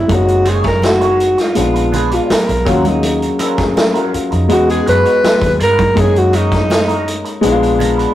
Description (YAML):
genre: lush 1970s-style soul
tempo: 82 BPM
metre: 4/4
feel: straight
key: F# major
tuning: A4 = 440 Hz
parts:
  - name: clear alto saxophone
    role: melody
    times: 0.0-7.5 s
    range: D#4 to B4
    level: -14 LUFS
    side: equal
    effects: none
  - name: warm grand piano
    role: accompaniment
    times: 0.0-8.1 s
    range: F#3 to A#4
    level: -17 LUFS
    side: left 3 dB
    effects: none
  - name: vintage muted fingered electric bass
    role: bass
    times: 0.0-8.0 s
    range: F#1 to G2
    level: -18 LUFS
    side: equal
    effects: none
  - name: vintage drum kit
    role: drums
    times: 0.1-8.1 s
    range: hi-hat, kick drum, snare drum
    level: -18 LUFS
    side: equal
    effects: none
  - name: congas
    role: percussion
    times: 0.1-8.0 s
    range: none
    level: -24 LUFS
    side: right 3 dB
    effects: none
  - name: electric guitar through a small old amp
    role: riff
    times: 0.5-8.1 s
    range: F#3 to D5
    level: -24 LUFS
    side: right 4 dB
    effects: wah
  - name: vibraphone with hard mallets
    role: texture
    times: 0.8-6.3 s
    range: C#4 to A#5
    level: -23 LUFS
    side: equal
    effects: none
room: moderate stone room reverb, RT60 1.0 s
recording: rough rehearsal-room recording, warm saturation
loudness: -11 LUFS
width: side -13 dB against mid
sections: 0.0-8.1 A section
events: alto saxophone solo 0.0-8.1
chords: 0.1 F#69; 1.6 A#7b9; 2.7 D#m9; 4.5 Emaj9; 6.0 F#69; 7.4 A#7b9